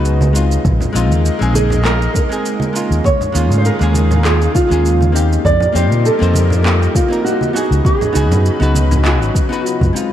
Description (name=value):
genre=sunset chillout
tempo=100 BPM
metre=4/4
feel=swing 54% on 16ths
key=unclear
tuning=A4 = 443 Hz
part: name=nylon-string guitar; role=melody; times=0.0-9.9 s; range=F4 to D5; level=-19 LUFS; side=right 2 dB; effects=tape echo
part: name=hollow-body jazz guitar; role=accompaniment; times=0.0-10.1 s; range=Ab3 to C5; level=-20 LUFS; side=moving between left 6 dB and right 4 dB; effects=auto-pan, tape echo
part: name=lush unison pad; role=sustained chords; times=0.0-10.1 s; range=Db3 to Cb5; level=-22 LUFS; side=left 1 dB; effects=chorus
part: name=fingered electric bass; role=bass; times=0.0-9.9 s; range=Ab1 to Bb2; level=-14 LUFS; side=equal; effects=none
part: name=electronic shaker and handclaps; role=drums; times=0.1-10.1 s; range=none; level=-25 LUFS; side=right 2 dB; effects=overdrive
part: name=congas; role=percussion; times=0.2-9.9 s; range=none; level=-22 LUFS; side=right 2 dB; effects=none
part: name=electronic kick drum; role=drums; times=0.6-9.9 s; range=none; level=-16 LUFS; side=equal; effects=none
room=light reverb, digital ambience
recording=dark, warm production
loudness=-12 LUFS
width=side -11 dB against mid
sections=0.0-10.1 A section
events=none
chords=0.0 Db9sus4; 0.6 Bb9sus4; 3.0 Eb9sus4; 5.4 F9sus4; 7.5 Db9sus4